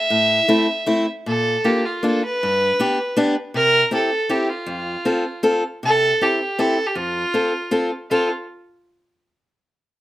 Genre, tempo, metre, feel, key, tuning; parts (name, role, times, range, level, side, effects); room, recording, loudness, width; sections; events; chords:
alpine folk; 158 BPM; 3/4; rubato; F major; A4 = 440 Hz
warm fiddle; melody; 0.0-8.3 s; F4 to E5; -19 LUFS; right 1 dB
fingerpicked steel-string acoustic guitar; accompaniment; 0.1-8.3 s; F2 to A4; -20 LUFS; left 1 dB
little or no reverb; recorded outdoors, with no room sound; -17 LUFS; side -15 dB against mid
0.0-5.8 A section; 5.8-8.1 B section; 8.1-9.2 C section
0.1 Am; 1.3 Bb; 2.4 G; 3.5 C7; 4.7 F; 5.8 C; 7.0 F